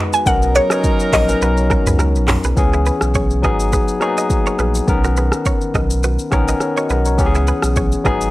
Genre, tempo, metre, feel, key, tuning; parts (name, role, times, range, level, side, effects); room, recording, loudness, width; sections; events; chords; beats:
afrobeats; 104 BPM; 4/4; swing 55% on 16ths; A4 = 440 Hz
mallet-like synth pluck; melody; 0.0-2.2 s; C#5 to G#5; -18 LUFS; equal; chorus
barky tine electric piano; accompaniment; 0.0-8.3 s; D#3 to A#5; -19 LUFS; left 3 dB
dark French horn section; sustained chords; 0.0-2.5 s; C#3 to A#4; -30 LUFS; left 1 dB
direct-recorded clean electric guitar; riff; 0.0-8.1 s; E4 to D#5; -25 LUFS; right 4 dB; analog delay
afro-pop drum kit; drums; 0.1-8.3 s; handclaps, hi-hat, kick drum, rim click, shaker, toms; -19 LUFS; equal
clear horn section; second line; 0.3-2.2 s; F#3 to A#4; -23 LUFS; right 2 dB
warm sub bass; bass; 0.3-8.3 s; G#1 to C#2; -18 LUFS; equal
digital ambience; dry, gritty hardware recording; -14 LUFS; side -18 dB against mid
0.0-2.6 A section; 2.6-8.3 B section
0.3 Bmaj9; 2.6 C#m7; 3.4 G#m7; 4.9 Bmaj9; 7.2 C#m7
| 0.26 0.84 1.42 1.99 | 2.57 3.15 3.72 4.30 | 4.88 5.46 6.03 6.61 | 7.19 7.76